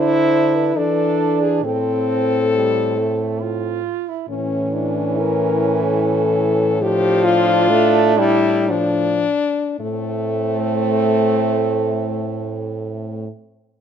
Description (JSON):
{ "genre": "classical, lyrical piece for horn quartet", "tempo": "53-75 BPM", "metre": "3/4", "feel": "rubato", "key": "A minor", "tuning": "A4 = 439 Hz", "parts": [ { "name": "mellow French horn", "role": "melody", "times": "0.0-13.3 s", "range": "A3 to C5", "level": "-20 LUFS", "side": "left 6 dB", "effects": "none" }, { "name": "warm French horn", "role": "second line", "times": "0.0-13.3 s", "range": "G3 to F4", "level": "-24 LUFS", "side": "right 13 dB", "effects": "none" }, { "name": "mellow French horn", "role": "accompaniment", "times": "0.0-13.3 s", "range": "E3 to E4", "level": "-21 LUFS", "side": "equal", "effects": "none" }, { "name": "mellow French horn", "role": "bass", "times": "0.0-13.3 s", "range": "A2 to E3", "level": "-24 LUFS", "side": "right 3 dB", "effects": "none" } ], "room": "moderate recital hall reverb, RT60 1.4 s", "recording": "close, detailed microphones", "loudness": "-16 LUFS", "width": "side -8 dB against mid", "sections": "0.0-4.3 A section; 4.3-9.8 B section; 9.8-13.1 C section", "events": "slowing down 3.0-9.8", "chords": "0.0 Cmaj9/D; 0.8 E7sus4; 1.6 Am; 4.3 A; 6.8 Dm/A; 9.8 Am" }